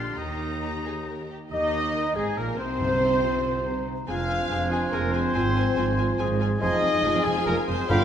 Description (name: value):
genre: classical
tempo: 141 BPM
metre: 3/4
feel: straight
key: Eb major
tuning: A4 = 437 Hz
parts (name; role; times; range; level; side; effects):
- warm symphonic violin section; melody; 0.0-8.0 s; Ab4 to C6; -36 LUFS; left 3 dB; none
- warm oboe; second line; 0.0-8.0 s; Eb4 to Ab5; -34 LUFS; equal; none
- warm symphonic violin section; second line; 0.0-8.0 s; G4 to F5; -35 LUFS; left 4 dB; none
- warm studio viola section; accompaniment; 0.0-8.0 s; F3 to Ab4; -35 LUFS; right 1 dB; none
- mellow French horn section; sustained chords; 0.0-8.0 s; D3 to G4; -32 LUFS; left 4 dB; none
- dark symphonic cello section; bass; 0.0-8.0 s; F2 to Eb3; -31 LUFS; right 2 dB; none
- rich symphonic double bass section; bass; 0.0-7.9 s; F1 to Eb2; -32 LUFS; right 2 dB; none
- mellow clarinet; second line; 1.5-8.0 s; C4 to Ab4; -34 LUFS; left 2 dB; none
- silver concert flute; second line; 1.5-8.0 s; Ab4 to C6; -34 LUFS; left 1 dB; none
- dark bassoon; accompaniment; 1.5-8.0 s; D3 to Eb4; -33 LUFS; right 2 dB; none
- brilliant trombone section; sustained chords; 1.5-8.0 s; Ab2 to B3; -36 LUFS; right 2 dB; none
- warm trumpet; stabs; 1.5-8.0 s; Ab4 to F5; -29 LUFS; right 1 dB; none
- timpani; percussion; 2.8-3.4, 7.9-8.0 s; G2; -31 LUFS; left 1 dB; none
room: moderate scoring stage reverb, RT60 1.9 s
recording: none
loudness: -22 LUFS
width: side -9 dB against mid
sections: 0.0-1.5 A section; 1.5-8.0 A section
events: none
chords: 0.2 Eb; 2.8 Cmadd11; 4.1 Fm; 5.3 Fm/Ab; 6.6 Fm7